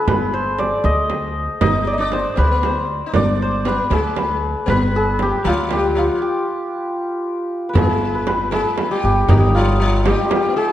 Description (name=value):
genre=Persian modal ensemble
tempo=78 BPM (dotted quarters)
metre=6/8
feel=straight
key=G dastgah homayun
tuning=A4 = 440 Hz
part: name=santur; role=melody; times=0.0-10.7 s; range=D4 to Eb5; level=-19 LUFS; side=left 1 dB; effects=none
part: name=upright bass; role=bass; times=0.1-10.1 s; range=G1 to D2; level=-20 LUFS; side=equal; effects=none
part: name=frame drum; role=percussion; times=0.1-10.4 s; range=none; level=-24 LUFS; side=right 4 dB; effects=none
part: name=sitar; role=second line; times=1.6-10.7 s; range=Eb3 to Eb4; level=-25 LUFS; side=left 3 dB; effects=none
part: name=tombak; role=percussion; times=7.8-10.4 s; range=none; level=-23 LUFS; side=left 1 dB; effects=none
room=moderate scoring stage reverb, RT60 1.5 s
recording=dark, warm production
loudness=-16 LUFS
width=side -12 dB against mid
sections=0.0-7.8 A section; 7.8-10.7 B section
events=stop 6.2-7.8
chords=none